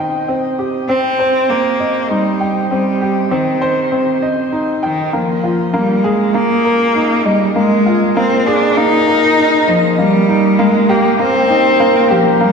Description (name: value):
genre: electronica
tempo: 99 BPM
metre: 4/4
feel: straight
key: unclear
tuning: A4 = 440 Hz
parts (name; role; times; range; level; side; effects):
- clear upright piano; riff; 0.0-12.5 s; Bb3 to G5; -15 LUFS; equal; shimmer reverb
- rich cello; melody; 0.9-12.5 s; Eb3 to Eb4; -14 LUFS; equal; shimmer reverb
room: wet scoring stage reverb, RT60 1.4 s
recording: dark, warm production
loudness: -11 LUFS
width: side -5 dB against mid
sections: 0.0-5.1 A section; 5.1-12.5 B section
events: build-up 5.1-12.5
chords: 0.0 Cm; 5.1 Bb7sus4; 10.0 Eb6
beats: | 0.29 0.89 1.50 2.10 | 2.71 3.32 3.92 4.53 | 5.13 5.74 6.35 6.95 | 7.56 8.17 8.77 9.38 | 9.98 10.59 11.20 11.80 | 12.41